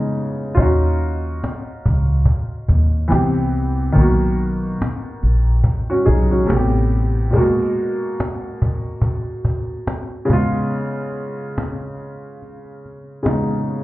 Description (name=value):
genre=lo-fi hip hop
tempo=71 BPM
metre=4/4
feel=swing 61% on 16ths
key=unclear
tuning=A4 = 440 Hz
part: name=felt-muted upright piano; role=accompaniment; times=0.0-13.8 s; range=Bb2 to Ab4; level=-20 LUFS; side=equal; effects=cassette tape, low-pass filter
part: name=upright bass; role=bass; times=0.6-7.3 s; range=A1 to Eb2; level=-17 LUFS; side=equal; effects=none
part: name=cajon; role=drums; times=0.6-13.8 s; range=none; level=-21 LUFS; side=equal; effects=none
room=light reverb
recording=heard muffled through a wall, club reverb, EQ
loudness=-16 LUFS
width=side -17 dB against mid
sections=0.0-13.8 A section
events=break 7.3-13.8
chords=0.0 Db7; 0.6 Ebm9; 3.1 Cmaj7; 4.0 Bmaj7; 6.5 Am9; 7.3 Abm9/Cb; 10.3 Db7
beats=| 0.58 1.42 2.27 3.11 | 3.96 4.80 5.65 6.49 | 7.34 8.18 9.03 9.87 | 10.72 11.56 12.41 13.25